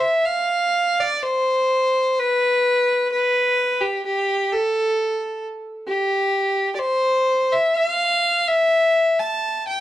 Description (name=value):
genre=celtic folk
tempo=64 BPM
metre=4/4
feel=rubato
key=G mixolydian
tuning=A4 = 439 Hz
part: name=rich fiddle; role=solo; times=0.0-9.8 s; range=G4 to A5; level=-18 LUFS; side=equal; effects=slapback echo
room=studio reverb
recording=dry, close 1970s-style studio recording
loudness=-18 LUFS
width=side -13 dB against mid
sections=0.0-9.8 A section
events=none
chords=none